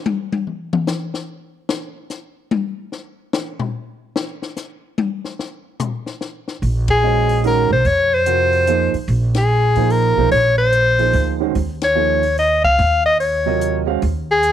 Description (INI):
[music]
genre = modal jazz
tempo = 146 BPM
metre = 3/4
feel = swing 64% on 8ths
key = Bb minor from 6.6 s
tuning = A4 = 440 Hz
[part]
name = compact cocktail drum kit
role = drums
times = 0.1-14.5 s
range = hi-hat, kick drum, ride cymbal, snare drum, toms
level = -24 LUFS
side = left 5 dB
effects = none
[part]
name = upright bass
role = bass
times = 6.6-14.5 s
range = Bb1 to F2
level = -19 LUFS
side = right 1 dB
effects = none
[part]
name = warm soprano saxophone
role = melody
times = 6.9-14.5 s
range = Ab4 to F5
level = -15 LUFS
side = left 2 dB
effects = none
[part]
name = warm grand piano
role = accompaniment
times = 7.0-14.0 s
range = C3 to F5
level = -21 LUFS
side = right 16 dB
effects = none
[sound]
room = small room ambience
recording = 1960s-style stereo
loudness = -15 LUFS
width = side -10 dB against mid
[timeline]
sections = 0.0-6.6 A section; 6.6-14.5 B section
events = drum solo 0.0-6.6; band accent 6.8, 9.3, 11.8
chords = 0.0 N.C.; 6.6 Bbm11; 11.6 Ebm11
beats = 0.06 | 0.47 0.88 1.29 | 1.70 2.11 2.52 | 2.93 3.34 3.75 | 4.16 4.57 4.98 | 5.39 5.80 6.21 | 6.62 7.03 7.44 | 7.85 8.27 8.68 | 9.09 9.50 9.91 | 10.32 10.73 11.14 | 11.55 11.96 12.37 | 12.79 13.20 13.61 | 14.02 14.43